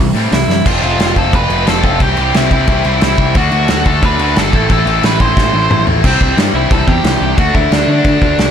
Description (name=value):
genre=punk rock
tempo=178 BPM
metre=4/4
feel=straight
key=unclear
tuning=A4 = 439 Hz
part: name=overdriven electric guitar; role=riff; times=0.0-8.5 s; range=A2 to G4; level=-18 LUFS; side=left 16 dB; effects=none
part: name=tight distorted guitar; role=riff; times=0.0-8.5 s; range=F2 to D4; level=-19 LUFS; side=right 14 dB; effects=distortion
part: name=growling picked electric bass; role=bass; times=0.0-8.5 s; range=F1 to D3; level=-16 LUFS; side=equal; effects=overdrive
part: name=dark smooth lead guitar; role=melody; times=0.3-8.5 s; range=C4 to C6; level=-17 LUFS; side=right 1 dB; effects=overdrive
part: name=loose indie drum kit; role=drums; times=0.3-8.5 s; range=crash cymbal, hi-hat, kick drum, snare drum, toms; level=-14 LUFS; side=equal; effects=none
room=little or no reverb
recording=none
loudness=-10 LUFS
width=side -8 dB against mid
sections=0.7-6.0 A section; 6.0-8.5 B section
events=drum fill 0.5, 5.4-6.0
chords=0.0 C; 0.7 F; 2.0 C; 3.4 D; 4.5 Am; 6.0 C; 7.4 D